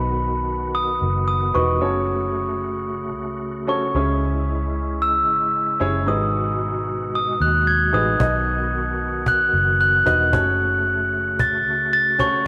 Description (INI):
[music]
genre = piano-driven pop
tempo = 113 BPM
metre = 4/4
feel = swing 56% on 16ths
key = B mixolydian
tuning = A4 = 440 Hz
[part]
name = glockenspiel with rubber mallets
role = melody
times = 0.0-12.5 s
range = B5 to A6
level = -23 LUFS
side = equal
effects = none
[part]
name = bright upright piano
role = accompaniment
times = 0.0-12.5 s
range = G#2 to D#5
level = -29 LUFS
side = equal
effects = none
[part]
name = bright tonewheel organ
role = sustained chords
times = 0.0-12.5 s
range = B2 to F#4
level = -32 LUFS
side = equal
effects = chorus vibrato, fast rotary speaker
[part]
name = vintage muted fingered electric bass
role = bass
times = 0.0-12.4 s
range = E1 to D#2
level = -28 LUFS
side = equal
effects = none
[part]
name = cajon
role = drums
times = 8.2-12.3 s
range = none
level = -27 LUFS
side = equal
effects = none
[sound]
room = wet echo chamber reverb, RT60 2.2 s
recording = none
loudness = -21 LUFS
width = mono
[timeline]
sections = 0.0-12.5 A section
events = none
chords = 0.0 B; 1.8 F#m; 3.9 C#m; 6.1 G#m7; 8.2 B; 10.3 F#m